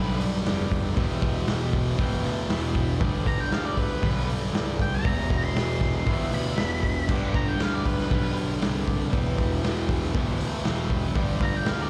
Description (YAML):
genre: garage rock duo or trio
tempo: 118 BPM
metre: 4/4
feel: straight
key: G mixolydian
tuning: A4 = 439 Hz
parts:
  - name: octave-fuzz lead guitar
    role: melody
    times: 0.0-0.2, 3.3-8.3, 11.4-11.9 s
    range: B4 to C6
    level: -35 LUFS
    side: equal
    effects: distortion, slapback echo
  - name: overdriven combo organ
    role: sustained chords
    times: 0.0-11.9 s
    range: B3 to B5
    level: -40 LUFS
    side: equal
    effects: spring reverb
  - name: fuzz guitar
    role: riff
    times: 0.0-11.9 s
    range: E2 to G3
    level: -31 LUFS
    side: equal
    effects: distortion, slapback echo
  - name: fuzz picked electric bass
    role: bass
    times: 0.0-11.9 s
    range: E1 to D2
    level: -31 LUFS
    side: equal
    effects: overdrive, tube saturation
  - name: raw garage drum kit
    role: drums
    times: 0.2-11.8 s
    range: crash cymbal, hi-hat, kick drum, snare drum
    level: -30 LUFS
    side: equal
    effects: none
room: little or no reverb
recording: live gig heard through the venue's PA, recital hall reverb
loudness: -26 LUFS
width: mono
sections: 0.0-11.9 A section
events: transistor combo organ fill 1.5-3.0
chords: 0.0 G; 1.0 Em; 3.0 G; 5.1 Em; 7.1 G; 9.1 Em; 11.2 G